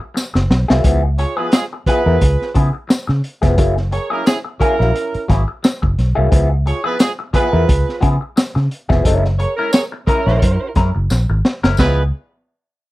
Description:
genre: funk.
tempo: 88 BPM.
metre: 4/4.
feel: swing 56% on 16ths.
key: unclear.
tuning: A4 = 440 Hz.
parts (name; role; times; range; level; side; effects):
electric guitar at the edge of break-up; accompaniment; 0.0-12.0 s; F3 to Db5; -20 LUFS; left 2 dB; wah, warbly pitch drift.
crunchy breakbeat drum kit; drums; 0.2-12.0 s; hi-hat, kick drum, snare drum, splash cymbal; -16 LUFS; equal; none.
tambourine; percussion; 0.2-12.1 s; none; -29 LUFS; left 2 dB; none.
vintage muted fingered electric bass; bass; 0.4-12.1 s; F1 to Db3; -16 LUFS; equal; none.
warm horn section; second line; 1.2-12.0 s; Ab3 to Db5; -19 LUFS; right 3 dB; none.
room: little or no reverb.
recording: dry, close 1970s-style studio recording.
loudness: -14 LUFS.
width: side -18 dB against mid.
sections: 0.0-11.8 A section; 11.8-12.9 B section.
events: drum fill 0.2-0.8, 11.1-11.8.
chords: 0.0 Gb9; 0.8 Db7#9; 3.6 Gb9; 6.3 Db7#9; 9.1 Gb9; 11.8 Db7#9.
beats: 0.16 | 0.84 1.53 2.21 2.90 | 3.58 4.26 4.95 5.63 | 6.32 7.00 7.69 8.37 | 9.05 9.74 10.42 11.11 | 11.79.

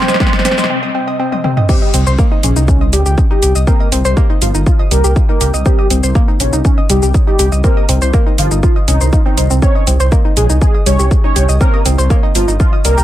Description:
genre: melodic techno.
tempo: 121 BPM.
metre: 4/4.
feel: straight.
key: C phrygian.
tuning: A4 = 440 Hz.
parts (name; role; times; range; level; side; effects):
fat analog lead; melody; 0.0-13.0 s; Db4 to Db5; -19 LUFS; right 1 dB; ensemble chorus, sidechain pumping, analog delay.
woody wave-folded pluck; arpeggios; 0.0-13.0 s; G3 to Eb6; -19 LUFS; equal; chorus, sidechain pumping, analog delay.
swarming drone; drone; 0.0-0.7 s; C3 to G3; -31 LUFS; equal; none.
techno drum kit; drums; 0.0-13.0 s; crash cymbal, hi-hat, shaker, snare drum, toms; -18 LUFS; left 1 dB; sidechain pumping on hats, sidechain pumping on perc, sidechain pumping on toms, sidechain pumping on cymbals, analog delay.
riser; sound effects; 0.0-0.7 s; none; -21 LUFS; left 2 dB; none.
electronic kick drum; drums; 0.2-12.7 s; none; -12 LUFS; equal; none.
swelling detuned saw bass; bass; 1.9-13.0 s; G1 to Db2; -13 LUFS; equal; sidechain pumping.
room: light reverb, digital ambience.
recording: echo-heavy mix.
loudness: -10 LUFS.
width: side -13 dB against mid.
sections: 0.0-1.7 A section; 1.7-13.0 B section.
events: build-up 0.0-1.7; drum fill 0.0-0.7, 1.3-1.7; riser 0.0-0.7; break 0.7-1.7; drop 1.7-13.0.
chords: 0.0 Cm; 1.7 Cm7; 9.6 Eb13.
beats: 0.20 0.70 1.19 | 1.69 2.19 2.68 3.18 | 3.67 4.17 4.67 5.16 | 5.66 6.15 6.65 7.14 | 7.64 8.14 8.63 9.13 | 9.62 10.12 10.62 11.11 | 11.61 12.10 12.60.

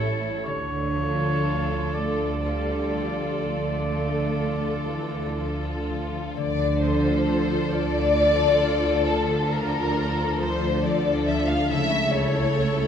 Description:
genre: classical, slow romantic movement for symphony orchestra.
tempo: 40-48 BPM (dotted quarters).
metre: 12/8.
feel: rubato.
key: D minor.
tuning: A4 = 440 Hz.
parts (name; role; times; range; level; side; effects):
warm symphonic violin section; melody; 0.0-12.9 s; A4; -33 LUFS; left 4 dB; none.
dark symphonic violin section; second line; 0.0-12.9 s; E4 to F5; -26 LUFS; left 3 dB; none.
warm oboe; second line; 0.0-5.9 s; C#5 to D5; -30 LUFS; right 3 dB; none.
warm studio viola section; accompaniment; 0.0-12.9 s; E3 to F4; -32 LUFS; right 1 dB; none.
concert harp; arpeggios; 0.0-12.9 s; A2 to A5; -32 LUFS; left 4 dB; none.
warm symphonic cello section; bass; 0.0-12.8 s; A2 to D3; -30 LUFS; right 2 dB; none.
warm symphonic double bass section; bass; 0.0-12.8 s; A1 to D2; -28 LUFS; right 2 dB; none.
room: wet recital hall reverb, RT60 1.5 s.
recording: recorded in a church or concert hall.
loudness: -22 LUFS.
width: side -8 dB against mid.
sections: 0.0-6.4 A section; 6.4-12.9 A section.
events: none.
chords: 0.5 Dm; 11.7 A/C#.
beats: | 0.46 1.94 3.43 4.89 | 6.37 7.71 9.06 10.40 | 11.70.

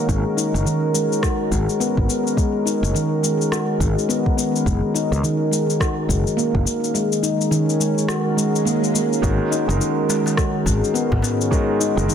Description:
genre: organic downtempo.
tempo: 105 BPM.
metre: 4/4.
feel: swing 60% on 16ths.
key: unclear.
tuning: A4 = 440 Hz.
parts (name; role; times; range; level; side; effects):
warm analog pad; sustained chords; 0.0-12.1 s; D#3 to A#4; -25 LUFS; right 1 dB; chorus, sidechain pumping.
handpan; arpeggios; 0.1-12.1 s; D#3 to F#4; -21 LUFS; left 1 dB; tape echo.
fretless electric bass; bass; 0.1-12.1 s; F#1 to C#2; -21 LUFS; equal; none.
electronic cabasa and rim click; drums; 0.1-12.1 s; none; -27 LUFS; left 3 dB; soft clipping on snare.
electronic kick drum; drums; 0.1-11.7 s; none; -22 LUFS; equal; none.
swell; sound effects; 8.4-9.2 s; none; -30 LUFS; right 6 dB; none.
felt-muted upright piano; accompaniment; 9.2-12.1 s; D#3 to A#4; -25 LUFS; right 4 dB; sidechain pumping, tape echo.
darbuka; percussion; 9.5-11.9 s; none; -29 LUFS; right 1 dB; none.
room: light reverb.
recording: dense, heavily limited modern master.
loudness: -17 LUFS.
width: side -8 dB against mid.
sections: 0.0-12.1 A section.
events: swell 8.4-9.2.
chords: 0.1 G#m7; 4.7 F#; 6.9 D#m; 9.2 G#7(no3).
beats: | 0.09 0.66 1.23 1.80 | 2.38 2.95 3.52 4.09 | 4.66 5.23 5.80 6.38 | 6.95 7.52 8.09 8.66 | 9.23 9.80 10.38 10.95 | 11.52 12.09.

